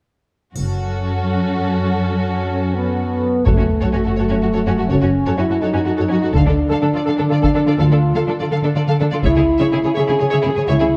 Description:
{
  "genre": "cinematic, epic orchestral film score",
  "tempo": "83 BPM (dotted quarters)",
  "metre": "6/8",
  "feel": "straight",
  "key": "F# minor",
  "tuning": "A4 = 440 Hz",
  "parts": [
    { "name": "rich symphonic violin section", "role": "melody", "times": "0.6-10.8 s", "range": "F#4 to F5", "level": "-32 LUFS", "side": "equal", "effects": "none" },
    { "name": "warm symphonic violin section", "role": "second line", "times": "0.6-10.9 s", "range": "C#4 to C#5", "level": "-29 LUFS", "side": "equal", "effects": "none" },
    { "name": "rich studio viola section", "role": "accompaniment", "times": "0.6-10.9 s", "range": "C#4 to A4", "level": "-29 LUFS", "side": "equal", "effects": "none" },
    { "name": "dark symphonic cello section", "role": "bass", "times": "0.6-10.9 s", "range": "F#2 to D3", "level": "-22 LUFS", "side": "equal", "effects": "none" },
    { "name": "rich symphonic double bass section", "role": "bass", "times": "0.6-1.0, 3.5-10.8 s", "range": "F#1 to D2", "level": "-22 LUFS", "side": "equal", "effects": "none" },
    { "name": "triangle", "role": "percussion", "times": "0.6-1.5 s", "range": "none", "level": "-42 LUFS", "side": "equal", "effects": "none" },
    { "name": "mellow French horn section", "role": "sustained chords", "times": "2.5-11.0 s", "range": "A3 to A4", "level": "-21 LUFS", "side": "equal", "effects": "none" },
    { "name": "taiko ensemble", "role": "drums", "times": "3.5-10.2 s", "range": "none", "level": "-22 LUFS", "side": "equal", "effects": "none" },
    { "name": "sub drop", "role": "sound effects", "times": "3.6-4.9 s", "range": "none", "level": "-28 LUFS", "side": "equal", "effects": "none" }
  ],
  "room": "moderate scoring stage reverb, RT60 1.7 s",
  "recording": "dark, warm production",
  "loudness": "-17 LUFS",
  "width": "mono",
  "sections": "0.6-3.5 A section; 3.5-11.0 B section",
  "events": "impact 3.5-4.9",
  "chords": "0.6 F#m; 6.4 Dm; 9.2 C#m",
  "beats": "| 0.56 1.29 | 2.01 2.73 | 3.46 4.18 | 4.91 5.63 | 6.35 7.08 | 7.80 8.52 | 9.24 9.96 | 10.69"
}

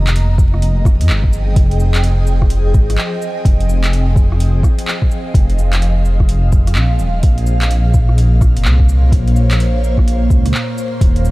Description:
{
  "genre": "future garage",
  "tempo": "127 BPM",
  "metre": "4/4",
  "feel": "swing 63% on 16ths",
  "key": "F minor",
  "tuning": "A4 = 441 Hz",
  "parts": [
    { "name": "ethereal airy pad", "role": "sustained chords", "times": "0.0-11.3 s", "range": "Bb2 to Bb5", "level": "-22 LUFS", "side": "equal", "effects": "ensemble chorus, built-in reverb, phaser, sidechain pumping" },
    { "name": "dark detuned saw bass", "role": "bass", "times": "0.0-11.3 s", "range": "Eb1 to F2", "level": "-13 LUFS", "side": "equal", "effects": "sidechain pumping" },
    { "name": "garage drum kit", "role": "drums", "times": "0.1-11.3 s", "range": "cabasa, handclaps, hi-hat, rim click", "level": "-24 LUFS", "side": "equal", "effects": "overdrive, studio reverb" },
    { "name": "electronic kick drum", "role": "drums", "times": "0.4-11.1 s", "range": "none", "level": "-12 LUFS", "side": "equal", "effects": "studio reverb" }
  ],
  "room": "digital ambience",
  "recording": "vinyl crackle",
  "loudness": "-11 LUFS",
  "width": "side -20 dB against mid",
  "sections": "0.0-11.3 A section",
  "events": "none",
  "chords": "0.0 Fm7; 7.2 Bbmadd9",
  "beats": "0.15 0.62 1.09 | 1.56 2.04 2.51 2.98 | 3.45 3.93 4.40 4.87 | 5.34 5.82 6.29 6.76 | 7.23 7.71 8.18 8.65 | 9.12 9.60 10.07 10.54 | 11.01"
}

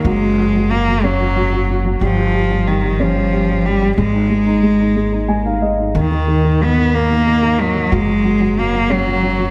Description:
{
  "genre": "six-eight pop ballad",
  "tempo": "61 BPM (dotted quarters)",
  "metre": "6/8",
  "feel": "straight",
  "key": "F# major",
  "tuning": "A4 = 440 Hz",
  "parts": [
    { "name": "clear cello", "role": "melody", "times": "0.0-9.5 s", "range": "D#3 to B3", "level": "-19 LUFS", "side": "equal", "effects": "analog delay" },
    { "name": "dark upright piano", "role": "accompaniment", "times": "0.0-9.5 s", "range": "D#3 to G#5", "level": "-21 LUFS", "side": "equal", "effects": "subtle chorus" },
    { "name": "upright bass", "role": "bass", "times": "0.0-9.5 s", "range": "F#1 to D#2", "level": "-22 LUFS", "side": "equal", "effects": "none" }
  ],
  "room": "moderate church reverb, RT60 2.8 s",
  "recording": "dreamy mix soaked in reverb",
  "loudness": "-16 LUFS",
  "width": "mono",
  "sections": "0.0-9.5 A section",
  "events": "upright piano fill 5.0-5.9",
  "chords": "0.0 F#5; 2.0 D#9/G (rootless); 4.0 G#5; 5.9 D#5; 7.9 F#5",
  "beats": "| 0.05 1.03 | 2.01 2.99 | 3.97 4.96 | 5.95 6.94 | 7.92 8.90"
}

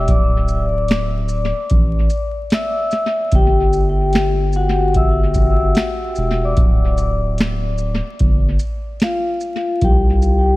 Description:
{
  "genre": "lo-fi hip hop",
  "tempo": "74 BPM",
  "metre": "4/4",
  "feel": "swing 64% on 16ths",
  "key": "unclear",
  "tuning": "A4 = 435 Hz",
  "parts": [
    { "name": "vibraphone with soft mallets", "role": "accompaniment", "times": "0.0-10.6 s", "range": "F4 to E6", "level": "-20 LUFS", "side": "left 2 dB", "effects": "cassette tape, low-pass filter, analog delay" },
    { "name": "saturated sub bass", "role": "bass", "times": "0.0-10.6 s", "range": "D1 to C2", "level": "-18 LUFS", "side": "equal", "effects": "none" },
    { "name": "booming analog drum machine", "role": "drums", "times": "0.1-10.5 s", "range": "finger snaps, hi-hat, kick drum, shaker, snare drum", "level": "-18 LUFS", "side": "equal", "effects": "vintage 12-bit sampler grit, analog delay" }
  ],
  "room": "digital ambience",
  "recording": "echo-heavy mix, vinyl crackle",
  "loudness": "-15 LUFS",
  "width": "side -18 dB against mid",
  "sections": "0.0-10.6 A section",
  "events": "vibraphone solo 0.0-10.6",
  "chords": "0.1 Dsus2; 3.3 G5; 6.6 N.C.; 8.2 Fsus2/G; 9.8 C5",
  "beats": "| 0.09 0.90 1.71 2.52 | 3.33 4.14 4.96 5.77 | 6.58 7.39 8.20 9.01 | 9.82"
}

